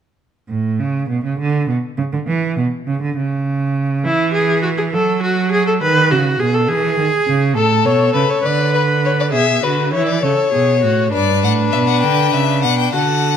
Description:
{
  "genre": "classical, baroque-style fugue for string quartet",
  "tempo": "68 BPM (dotted quarters)",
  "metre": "6/8",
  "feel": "straight",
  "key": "A major",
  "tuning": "A4 = 439 Hz",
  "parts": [
    { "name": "rich cello", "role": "bass", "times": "0.5-13.4 s", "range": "G2 to F#3", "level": "-18 LUFS", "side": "right 4 dB", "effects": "none" },
    { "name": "rich viola", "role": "accompaniment", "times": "4.0-13.4 s", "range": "D4 to B4", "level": "-18 LUFS", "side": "right 1 dB", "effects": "none" },
    { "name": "warm violin", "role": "second line", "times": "7.6-13.4 s", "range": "A4 to E5", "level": "-17 LUFS", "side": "left 7 dB", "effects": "none" },
    { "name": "clear violin", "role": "melody", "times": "11.1-13.4 s", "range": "D5 to G5", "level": "-19 LUFS", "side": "left 11 dB", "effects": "none" }
  ],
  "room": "moderate recital hall reverb, RT60 1.6 s",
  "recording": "none",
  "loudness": "-14 LUFS",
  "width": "side -8 dB against mid",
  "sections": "0.5-11.1 A section; 11.1-13.4 B section",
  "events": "none",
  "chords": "0.5 A; 1.4 N.C.; 2.3 E5; 3.2 N.C.; 4.0 E; 4.9 F#m; 5.8 B7; 6.7 E; 7.6 A; 8.4 Bm/D; 9.3 E7/B; 10.2 A; 11.1 Em7/G (rootless)"
}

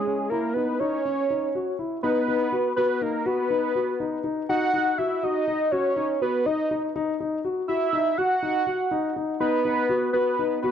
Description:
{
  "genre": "progressive instrumental, progressive",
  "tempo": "244 BPM (eighths)",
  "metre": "5/8",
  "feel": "straight",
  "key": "B major",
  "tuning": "A4 = 439 Hz",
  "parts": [
    { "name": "fat analog lead", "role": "melody", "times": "0.0-10.7 s", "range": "G#4 to F#5", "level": "-24 LUFS", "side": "right 1 dB", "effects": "chorus, phaser" },
    { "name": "dark concert grand piano", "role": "arpeggios", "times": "0.1-10.7 s", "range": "C#4 to F#4", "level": "-27 LUFS", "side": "left 3 dB", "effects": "none" }
  ],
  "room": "moderate plate reverb, RT60 2.8 s",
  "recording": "none",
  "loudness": "-22 LUFS",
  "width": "side -8 dB against mid",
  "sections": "0.0-2.0 A section; 2.0-10.7 B section",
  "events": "none",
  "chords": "0.0 C#madd9; 2.0 B"
}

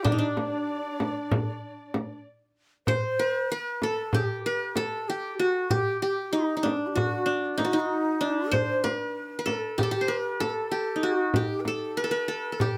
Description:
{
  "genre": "Turkish makam ensemble",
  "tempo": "191 BPM (eighths)",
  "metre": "9/8",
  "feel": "straight",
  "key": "D makam hicaz",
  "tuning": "A4 = 439 Hz",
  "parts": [
    { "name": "qanun", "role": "melody", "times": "0.0-12.8 s", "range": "D4 to C5", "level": "-30 LUFS", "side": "equal", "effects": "none" },
    { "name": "breathy bright ney", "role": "second line", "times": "0.0-12.8 s", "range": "C4 to C5", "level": "-34 LUFS", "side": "equal", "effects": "none" },
    { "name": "dark studio violin section", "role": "second line", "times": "0.0-2.2 s", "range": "D5", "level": "-44 LUFS", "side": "equal", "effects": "none" },
    { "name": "frame drum", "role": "percussion", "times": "0.1-12.7 s", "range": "none", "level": "-31 LUFS", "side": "equal", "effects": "none" }
  ],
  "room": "wet booth ambience, RT60 0.2 s",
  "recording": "none",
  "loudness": "-28 LUFS",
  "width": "mono",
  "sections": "0.0-2.9 A section; 2.9-12.8 B section",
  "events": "none",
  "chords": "none"
}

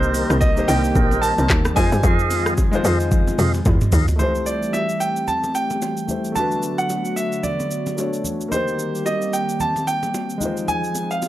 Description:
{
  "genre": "amapiano",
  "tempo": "111 BPM",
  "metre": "4/4",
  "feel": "swing 58% on 16ths",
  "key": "unclear",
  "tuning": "A4 = 439 Hz",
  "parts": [
    { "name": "clear concert grand piano", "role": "melody", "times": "0.0-11.3 s", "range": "C5 to A5", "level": "-24 LUFS", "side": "right 1 dB", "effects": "analog delay" },
    { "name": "warm baby grand piano", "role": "accompaniment", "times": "0.0-11.3 s", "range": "Ab3 to C#5", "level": "-26 LUFS", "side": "left 2 dB", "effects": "none" },
    { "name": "hollow soft pad", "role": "sustained chords", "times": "0.0-11.3 s", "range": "D3 to Ab4", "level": "-27 LUFS", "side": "equal", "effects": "chorus" },
    { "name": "tonewheel organ", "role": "stabs", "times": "0.0-4.1 s", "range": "Ab4 to F5", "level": "-26 LUFS", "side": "right 2 dB", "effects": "slow rotary speaker, analog delay" },
    { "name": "tight log drum bass", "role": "bass", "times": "0.0-4.1 s", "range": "Bb1 to G2", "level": "-20 LUFS", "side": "equal", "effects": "none" },
    { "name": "afro-pop drum kit", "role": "drums", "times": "0.0-11.3 s", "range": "handclaps, hi-hat, kick drum, rim click, shaker, toms", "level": "-21 LUFS", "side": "equal", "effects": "overdrive" },
    { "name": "bongos and congas", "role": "percussion", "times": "0.1-11.3 s", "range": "none", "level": "-32 LUFS", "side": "right 2 dB", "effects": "none" }
  ],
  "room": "digital ambience",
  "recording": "dry, gritty hardware recording",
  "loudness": "-18 LUFS",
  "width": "side -14 dB against mid",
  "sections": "0.0-4.2 A section; 4.2-11.3 B section",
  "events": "drop 0.0-4.2; drum fill 3.1-4.2",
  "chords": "0.0 Cm7; 1.8 Fm7; 4.2 Am7; 6.4 Bm7; 8.5 Cm7; 10.4 Fm7"
}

